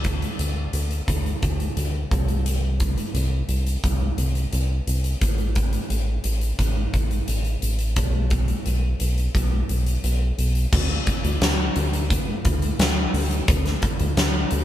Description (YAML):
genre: piano-driven pop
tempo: 87 BPM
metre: 4/4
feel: straight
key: unclear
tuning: A4 = 440 Hz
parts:
  - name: round analog bass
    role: bass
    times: 0.0-14.6 s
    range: A1 to D2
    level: -23 LUFS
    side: equal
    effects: none
  - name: huge arena drum kit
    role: drums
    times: 0.0-14.6 s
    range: crash cymbal, hi-hat, kick drum, snare drum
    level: -24 LUFS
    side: equal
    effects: none
room: light reverb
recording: band playing live in one room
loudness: -20 LUFS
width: side -12 dB against mid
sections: 0.0-10.7 A section; 10.7-14.6 B section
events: none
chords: none